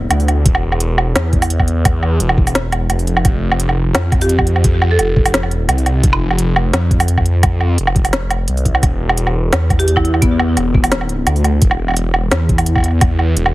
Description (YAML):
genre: half-time drum and bass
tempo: 172 BPM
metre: 4/4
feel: half-time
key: E phrygian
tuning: A4 = 437 Hz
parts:
  - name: phased detuned saw bass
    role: bass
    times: 0.0-13.5 s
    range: E1 to F2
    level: -15 LUFS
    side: equal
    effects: phaser
  - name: organic electronic drum kit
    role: drums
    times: 0.1-13.5 s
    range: hi-hat, snare drum, woodblock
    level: -17 LUFS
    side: right 1 dB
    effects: overdrive
  - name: electronic kick drum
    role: drums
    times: 0.5-13.1 s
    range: none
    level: -16 LUFS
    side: equal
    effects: none
  - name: marimba with hard mallets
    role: melody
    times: 4.2-5.2, 9.8-10.6 s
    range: B3 to A4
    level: -20 LUFS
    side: equal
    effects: digital delay
room: digital ambience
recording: heavily compressed radio sound, multiband compression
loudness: -12 LUFS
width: side -18 dB against mid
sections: 0.0-13.5 A section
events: none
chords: 0.0 E5; 3.2 F5; 8.8 E5